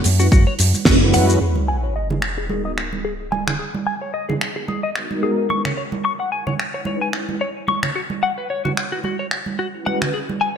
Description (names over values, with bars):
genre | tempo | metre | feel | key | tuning
nu-disco, nu disco | 110 BPM | 4/4 | swing 55% on 16ths | G# minor | A4 = 441 Hz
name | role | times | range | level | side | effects
damped 70s drum kit | drums | 0.0-10.1 s | finger snaps, hi-hat, shaker, snare drum | -22 LUFS | right 1 dB | gated reverb
picked electric bass with an envelope filter | bass | 0.1-1.4 s | F#1 to F#2 | -17 LUFS | equal | none
mellow synth brass | accompaniment | 0.2-10.1 s | G#3 to B4 | -25 LUFS | equal | chorus, sidechain pumping, ping-pong delay
direct-recorded clean electric guitar | riff | 0.2-10.5 s | F#4 to C#6 | -24 LUFS | left 4 dB | analog chorus, low-pass filter, ping-pong delay
electronic kick drum | drums | 0.3-1.0 s | none | -15 LUFS | equal | none
congas | percussion | 0.3-10.4 s | none | -27 LUFS | right 5 dB | none
sub drop | sound effects | 1.4-3.6 s | none | -25 LUFS | equal | none
room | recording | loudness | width
moderate plate reverb, RT60 1.8 s, small room ambience | bright 1980s-style digital production | -18 LUFS | side -8 dB against mid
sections
0.0-1.4 A section; 1.4-10.6 B section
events
band accent 0.9; impact 1.4-3.6; filter sweep on clean electric guitar 1.4-10.6; filter sweep on analog polysynth 1.4-10.6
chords
0.0 F#9sus4; 1.4 G#m7; 5.5 C#m9; 8.0 F#9sus4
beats
0.32 0.86 | 1.41 1.96 2.50 3.05 | 3.59 4.14 4.68 5.23 | 5.77 6.32 6.87 7.41 | 7.96 8.50 9.05 9.59 | 10.14